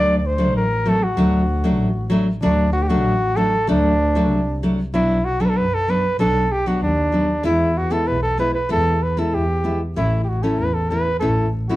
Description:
klezmer; 96 BPM; 2/4; straight; D major, B minor from 4.9 s; A4 = 443 Hz
breathy cornet; melody; 0.0-11.8 s; D4 to D5; -20 LUFS; equal; plate reverb
nylon-string guitar; accompaniment; 0.0-11.8 s; F#3 to E4; -21 LUFS; left 1 dB
dark double bass; bass; 0.0-11.6 s; A1 to F#2; -22 LUFS; equal
moderate studio reverb, RT60 0.6 s; dark, warm production; -17 LUFS; side -16 dB against mid
0.0-4.9 A section; 4.9-11.8 B section
0.0 D; 4.9 Bm; 7.4 E; 10.0 A

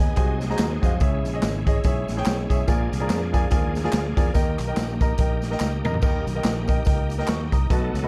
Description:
uptempo gospel; 144 BPM; 4/4; swing 57% on 8ths; A4 = 440 Hz
warm concert grand piano; accompaniment; 0.0-8.1 s; A#2 to D#6; -30 LUFS; equal
bright tonewheel organ; sustained chords; 0.0-8.1 s; E#3 to A4; -35 LUFS; equal; slow rotary speaker, overdrive, chorus vibrato
fingered electric bass; bass; 0.0-8.1 s; G#1 to E#2; -30 LUFS; equal
swinging big-band drum kit; drums; 0.2-8.0 s; hi-hat, kick drum, snare drum, splash cymbal, toms; -25 LUFS; equal
tambourine and handclaps; percussion; 0.2-8.0 s; -41 LUFS; equal
small room ambience; dark, warm production; -23 LUFS; mono
0.0-8.1 A section
drum fill 5.6-6.0
0.2 G#7/B#; 1.0 C#m; 2.7 A#7; 4.4 D#

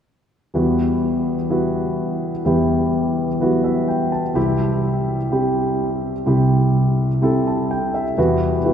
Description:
pop; 126 BPM; 4/4; straight; E minor; A4 = 440 Hz
dark grand piano; accompaniment; 0.5-8.7 s; C2 to A5; -17 LUFS; equal
wet cathedral reverb, RT60 5.4 s; recorded in a church or concert hall; -17 LUFS; side -8 dB against mid
0.5-8.2 A section
grand piano fill 3.4-4.4, 7.2-8.2
0.5 Emadd9; 4.4 C; 8.2 Emadd9

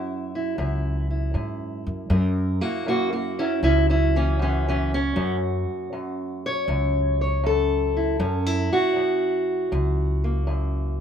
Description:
acoustic country blues, solo or duo; 79 BPM; 4/4; swing 68% on 8ths; F# mixolydian; A4 = 440 Hz
fingerpicked steel-string acoustic guitar; melody; 0.0-11.0 s; F#2 to C#5; -24 LUFS; equal
upright bass; bass; 0.6-11.0 s; C#2 to G#2; -23 LUFS; equal
light reverb; minimal, uncompressed stereo recording; -21 LUFS; side -8 dB against mid
0.0-2.1 A section; 2.1-11.0 B section
steel-string acoustic guitar solo 2.1-11.0
0.0 F#7

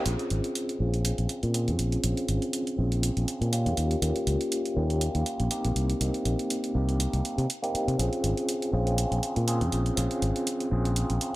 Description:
filtered disco house; 121 BPM; 4/4; swing 55% on 16ths; Bb dorian; A4 = 440 Hz
overdriven tine electric piano; accompaniment; 0.0-11.4 s; Bb3 to Ab4; -29 LUFS; equal; medium tremolo, phaser, low-pass filter
modern bright fingered electric bass; bass; 0.1-11.2 s; Ab1 to C3; -26 LUFS; equal; low-pass filter
electronic hi-hat; drums; 0.1-11.3 s; -34 LUFS; right 2 dB; overdrive
light reverb, digital ambience; -25 LUFS; side -18 dB against mid
0.1-11.4 A section
0.1 Bbm7; 3.8 Eb7; 5.8 Cm7; 8.0 Bbm7

